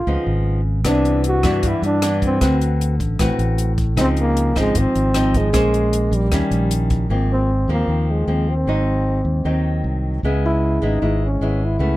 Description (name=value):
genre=bossa nova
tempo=154 BPM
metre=4/4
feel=straight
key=unclear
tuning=A4 = 441 Hz
part: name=breathy trombone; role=melody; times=0.0-12.0 s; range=G3 to Gb4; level=-21 LUFS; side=equal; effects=none
part: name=nylon-string guitar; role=accompaniment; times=0.0-12.0 s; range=G2 to C5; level=-22 LUFS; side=left 1 dB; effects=none
part: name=fingered electric bass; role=bass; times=0.0-12.0 s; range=Ab1 to G2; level=-19 LUFS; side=equal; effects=none
part: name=compact cocktail drum kit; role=drums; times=0.8-7.0 s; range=hi-hat, kick drum, rim click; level=-24 LUFS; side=equal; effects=none
room=little or no reverb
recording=close, detailed microphones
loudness=-16 LUFS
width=side -16 dB against mid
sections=0.0-7.1 A section; 7.1-12.0 B section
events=none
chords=0.1 Db9; 0.8 Cmaj9; 2.4 D6; 4.0 Dbmaj9; 5.5 Bbm9; 6.3 Eb7b9; 7.1 Ab69; 8.7 Ab7; 10.2 Dbm7